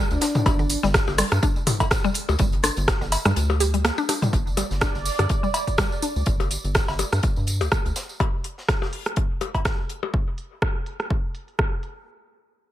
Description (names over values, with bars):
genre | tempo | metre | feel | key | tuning
minimal techno | 124 BPM | 4/4 | swing 56% on 16ths | unclear | A4 = 439 Hz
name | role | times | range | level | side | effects
mallet-like synth pluck | riff | 0.0-6.1 s | D3 to G4 | -28 LUFS | left 1 dB | chorus, sidechain pumping, dub echo
breathy flute-like synth lead | melody | 0.1-0.8 s | D4 | -29 LUFS | equal | chorus, tremolo, dub echo
rubbery square bass | bass | 0.1-7.9 s | G1 to G2 | -24 LUFS | equal | sidechain pumping
deep reggae drum kit | drums | 0.1-10.0 s | hi-hat, snare drum | -36 LUFS | left 3 dB | sidechain pumping on hats, high-pass filter on hats, high-pass filter on snare, high-pass filter on room
tambourine | percussion | 0.1-8.2 s | none | -34 LUFS | right 2 dB | none
minimal click drum kit | drums | 0.2-11.9 s | hi-hat, rim click | -26 LUFS | right 1 dB | low-pass filter on hats, low-pass filter on snare, low-pass filter on room
techno drum kit | percussion | 0.4-10.1 s | cowbell, percussion blips, rim click, toms | -26 LUFS | left 3 dB | dub echo
electronic kick drum | drums | 0.5-11.7 s | none | -24 LUFS | equal | none
bubbling stepped-filter texture | texture | 4.3-6.3 s | D5 | -33 LUFS | right 6 dB | chorus, built-in reverb, sidechain pumping
room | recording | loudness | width
digital ambience | none | -21 LUFS | side -13 dB against mid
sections
0.0-4.3 A section; 4.3-12.1 B section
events
drop 0.0-4.3; kick drops out 3.4-4.3; filter sweep on drum 4.3-12.1; filter sweep on synth arpeggio sound 4.3-6.3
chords
0.0 G5